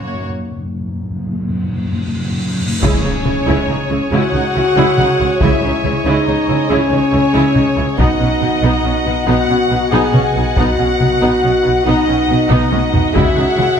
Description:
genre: cinematic, epic orchestral film score.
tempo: 93 BPM (dotted quarters).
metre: 12/8.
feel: straight.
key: unclear.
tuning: A4 = 440 Hz.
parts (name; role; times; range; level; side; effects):
warm symphonic violin section; melody; 0.0-13.8 s; C#5 to F#5; -24 LUFS; left 4 dB; none.
rich symphonic violin section; second line; 0.0-13.8 s; F#4 to G#5; -22 LUFS; left 1 dB; none.
warm symphonic viola section; accompaniment; 0.0-13.7 s; G#3 to E4; -21 LUFS; right 1 dB; none.
warm French horn section; sustained chords; 0.0-13.8 s; A#3 to G#4; -17 LUFS; left 2 dB; none.
rich symphonic cello section; bass; 0.0-13.7 s; F#2 to C#3; -21 LUFS; right 3 dB; none.
timpani; percussion; 0.0-2.8 s; F#2; -21 LUFS; left 1 dB; none.
cymbal swell and impact; sound effects; 1.8-5.4 s; none; -26 LUFS; equal; none.
mellow woodwind section; sustained chords; 2.8-13.8 s; G#3 to G#5; -23 LUFS; left 1 dB; none.
warm symphonic double bass section; bass; 2.8-13.7 s; B1 to C#2; -21 LUFS; right 3 dB; none.
taiko ensemble; drums; 2.8-13.8 s; none; -18 LUFS; equal; none.
room: wet recital hall reverb, RT60 1.4 s.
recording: none.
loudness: -12 LUFS.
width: side -7 dB against mid.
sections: 0.0-2.8 A section; 2.8-13.8 B section.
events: build-up 0.0-2.8; timpani fill 0.0-2.8; cymbal swell 1.8-2.8; impact 2.8-5.4; drum fill 12.5-13.1.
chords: 0.0 F#; 2.8 C#m; 8.0 B; 13.1 C#m.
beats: | 0.24 0.89 1.53 2.18 | 2.83 3.47 4.12 4.76 | 5.41 6.05 6.70 7.34 | 7.99 8.63 9.28 9.92 | 10.57 11.21 11.86 12.50 | 13.15 13.79.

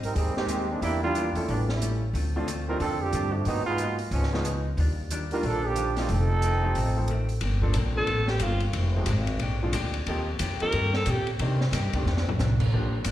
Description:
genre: jazz, big band swing.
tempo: 182 BPM.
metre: 4/4.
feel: swing 62% on 8ths.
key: G minor from 7.4 s.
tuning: A4 = 440 Hz.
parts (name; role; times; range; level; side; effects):
clear trombone section; second line; 0.0-7.3 s; Eb3 to Bb4; -28 LUFS; right 4 dB; slapback echo.
hollow-body jazz guitar; accompaniment; 0.0-13.1 s; F2 to G4; -35 LUFS; left 5 dB; slapback echo.
upright bass; bass; 0.0-13.1 s; F1 to C3; -27 LUFS; equal; none.
open jazz drum kit; drums; 0.0-13.1 s; crash cymbal, hi-hat, kick drum, ride cymbal, snare drum, toms; -32 LUFS; equal; none.
clear upright piano; accompaniment; 0.4-12.9 s; Eb3 to A4; -33 LUFS; equal; slapback echo.
clear alto saxophone; melody; 8.0-11.3 s; F4 to Bb4; -27 LUFS; equal; slapback echo.
room: little or no reverb.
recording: live gig heard through the venue's PA, recital hall reverb.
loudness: -24 LUFS.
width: side -13 dB against mid.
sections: 0.0-7.4 A section; 7.4-13.1 B section.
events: trombone section solo 0.0-7.4; alto saxophone solo 7.4-13.1; drum fill 12.1-12.4.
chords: 0.0 Abmaj7; 0.8 Em7b5; 1.5 A7b13; 2.1 Dm7; 3.5 Abm7; 4.1 Db9; 4.8 Ebmaj9; 6.1 F7; 7.4 Gm11; 8.7 Fm7; 9.4 Bb13; 10.1 Eb69; 11.4 Cm7; 12.1 F6.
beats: 0.16 0.49 | 0.82 1.16 1.49 1.81 | 2.15 2.47 2.80 3.13 | 3.46 3.79 4.12 4.45 | 4.78 5.11 5.44 5.77 | 6.10 6.43 6.76 7.09 | 7.42 7.75 8.08 8.41 | 8.74 9.08 9.41 9.74 | 10.07 10.40 10.73 11.07 | 11.40 11.73 12.06 12.39 | 12.72 13.06.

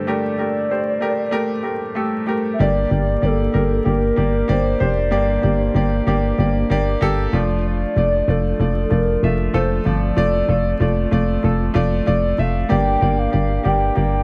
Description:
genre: piano-driven pop.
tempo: 95 BPM.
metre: 4/4.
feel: straight.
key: unclear.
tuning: A4 = 440 Hz.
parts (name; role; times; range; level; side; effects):
hollow clarinet-like synth lead; melody; 0.0-14.2 s; A4 to G5; -25 LUFS; equal; chorus.
clear concert grand piano; accompaniment; 0.0-14.2 s; G2 to E5; -23 LUFS; equal; none.
mellow tonewheel organ; sustained chords; 2.6-14.2 s; F3 to G4; -33 LUFS; equal; none.
solid FM bass; bass; 2.6-14.2 s; F1 to G1; -22 LUFS; equal; none.
room: moderate studio reverb, RT60 0.5 s.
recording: vinyl crackle.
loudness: -19 LUFS.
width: mono.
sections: 0.0-2.6 A section; 2.6-14.2 B section.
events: none.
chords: 0.0 Gmadd9; 2.6 Gm; 7.3 Dm/F; 12.7 Gm.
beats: | 0.07 0.70 1.34 1.97 | 2.60 3.23 3.86 4.50 | 5.13 5.76 6.39 7.02 | 7.65 8.28 8.91 9.55 | 10.18 10.81 11.44 12.07 | 12.70 13.34 13.97.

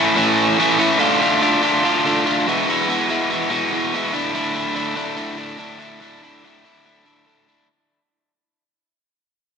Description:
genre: rock.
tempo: 144 BPM.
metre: 4/4.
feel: straight.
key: unclear.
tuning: A4 = 441 Hz.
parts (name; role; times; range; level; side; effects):
overdriven electric guitar; solo; 0.0-7.7 s; E2 to F4; -16 LUFS; equal; analog delay.
room: wet scoring stage reverb, RT60 1.6 s.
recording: nothing above 10.6 kHz.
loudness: -16 LUFS.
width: side -6 dB against mid.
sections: 1.0-7.7 A section.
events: fade-out 1.0-7.7.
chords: 0.0 A; 1.0 Dm; 2.4 E; 4.1 Dsus2.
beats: 0.16 0.57 | 0.99 1.41 1.82 2.24 | 2.66 3.07 3.49 3.91 | 4.33 4.75 5.16 5.58 | 6.00 6.42 6.83 7.25.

